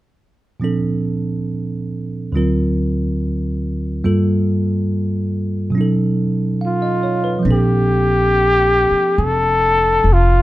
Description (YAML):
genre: jazz ballad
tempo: 70 BPM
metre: 4/4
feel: swing 67% on 8ths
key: Bb major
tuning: A4 = 441 Hz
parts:
  - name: bell-like tine electric piano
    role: accompaniment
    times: 0.6-10.4 s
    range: D2 to F5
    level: -18 LUFS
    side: right 1 dB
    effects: none
  - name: breathy trumpet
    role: melody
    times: 6.7-10.4 s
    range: F4 to A4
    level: -15 LUFS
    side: left 1 dB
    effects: none
  - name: upright bass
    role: bass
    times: 7.5-10.4 s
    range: F1 to Bb1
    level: -17 LUFS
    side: equal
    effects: none
room: light reverb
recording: minimal, uncompressed stereo recording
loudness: -15 LUFS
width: side -16 dB against mid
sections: 0.6-7.5 A section; 7.5-10.4 B section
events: none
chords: 0.6 Bbmaj7; 2.3 D7alt; 4.0 Gm7; 5.7 B9; 7.5 Bbmaj9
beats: | 0.61 1.48 2.33 3.18 | 4.03 4.88 5.73 6.59 | 7.46 8.32 9.19 10.05